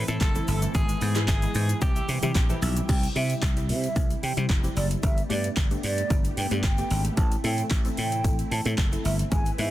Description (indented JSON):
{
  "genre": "dance-pop",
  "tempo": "112 BPM",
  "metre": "4/4",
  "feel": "straight",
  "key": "C major",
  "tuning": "A4 = 440 Hz",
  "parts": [
    { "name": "direct-recorded clean electric guitar", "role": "melody", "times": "0.0-2.6 s", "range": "G4 to A4", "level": "-35 LUFS", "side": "equal", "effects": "tremolo, dub echo" },
    { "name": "string machine, cellos", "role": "sustained chords", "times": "0.0-9.7 s", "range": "C3 to B4", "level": "-36 LUFS", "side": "equal", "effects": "ensemble chorus, sidechain pumping" },
    { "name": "tight sequenced synth", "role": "arpeggios", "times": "0.0-2.9 s", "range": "E3 to E5", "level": "-39 LUFS", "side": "right 2 dB", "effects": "chorus, sidechain pumping, dub echo" },
    { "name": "dry thumbed slap bass", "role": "bass", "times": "0.0-9.7 s", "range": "F1 to C3", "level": "-27 LUFS", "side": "equal", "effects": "sidechain pumping" },
    { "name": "analog pluck", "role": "accompaniment", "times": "0.1-9.7 s", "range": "E3 to B4", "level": "-34 LUFS", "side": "left 2 dB", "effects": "chorus, sidechain pumping" },
    { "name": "pop drum kit", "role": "drums", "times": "0.1-9.7 s", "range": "crash cymbal, handclaps, hi-hat, kick drum, shaker", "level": "-26 LUFS", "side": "equal", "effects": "overdrive" },
    { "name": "tube shaker", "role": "percussion", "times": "0.1-9.6 s", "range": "none", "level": "-45 LUFS", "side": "left 6 dB", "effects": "none" },
    { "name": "mellow hollow concert flute", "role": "melody", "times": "2.9-9.7 s", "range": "D5 to A5", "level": "-32 LUFS", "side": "right 2 dB", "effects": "sidechain pumping, dub echo" }
  ],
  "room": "little or no reverb",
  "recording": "dense, heavily limited modern master",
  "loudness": "-23 LUFS",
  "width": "side -14 dB against mid",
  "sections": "0.0-2.9 A section; 2.9-9.7 B section",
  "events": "none",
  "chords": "0.0 Am; 0.7 E/G#; 1.8 C; 5.0 Gadd9; 7.2 Am"
}